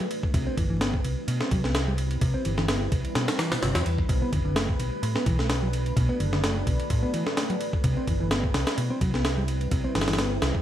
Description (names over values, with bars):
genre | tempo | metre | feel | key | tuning
breakbeat, breaks | 128 BPM | 4/4 | swing 54% on 16ths | unclear | A4 = 440 Hz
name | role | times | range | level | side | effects
deep dark ambient pad | sustained chords | 0.0-10.6 s | G3 to B4 | -33 LUFS | right 1 dB | chorus, built-in reverb, sidechain pumping
picked electric bass | riff | 0.0-10.3 s | A2 to C4 | -29 LUFS | equal | digital delay
breakbeat sampler-style drum kit | drums | 0.0-10.6 s | kick drum, ride cymbal, snare drum | -27 LUFS | equal | none
hollow-body short-scale fingered electric bass | bass | 0.3-10.5 s | F#1 to E2 | -28 LUFS | equal | tube saturation
room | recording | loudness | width
little or no reverb | vinyl crackle | -23 LUFS | side -11 dB against mid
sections
0.0-10.6 A section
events
none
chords
0.3 Cmaj7; 4.1 Bm7; 7.8 Cmaj7